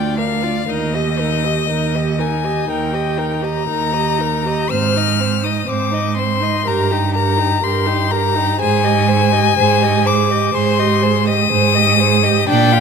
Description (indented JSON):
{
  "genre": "classical, slow romantic movement for string quartet",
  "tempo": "61 BPM",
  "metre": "4/4",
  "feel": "rubato",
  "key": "unclear",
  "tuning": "A4 = 440 Hz",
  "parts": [
    { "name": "clear violin", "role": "melody", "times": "0.0-12.8 s", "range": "Eb5 to F6", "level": "-18 LUFS", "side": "left 9 dB", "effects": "none" },
    { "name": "rich violin", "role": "second line", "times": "0.0-12.8 s", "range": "G4 to F5", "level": "-23 LUFS", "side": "left 1 dB", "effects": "none" },
    { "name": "rich viola", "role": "accompaniment", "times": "0.0-12.8 s", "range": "C4 to Ab4", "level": "-22 LUFS", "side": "right 5 dB", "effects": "none" },
    { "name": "rich cello", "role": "bass", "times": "0.0-12.8 s", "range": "D2 to Bb2", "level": "-18 LUFS", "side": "right 5 dB", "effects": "none" }
  ],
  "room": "light reverb",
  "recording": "none",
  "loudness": "-14 LUFS",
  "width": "side -6 dB against mid",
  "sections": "0.0-12.8 A section",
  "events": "none",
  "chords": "0.0 Bb/D; 0.7 Eb; 4.7 Ab; 6.7 Eb/G; 8.6 Abmaj7",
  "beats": "| 0.69 1.69 2.69 3.67 | 4.70 5.68 6.66 7.62 | 8.60 9.57 10.54 11.51 | 12.49"
}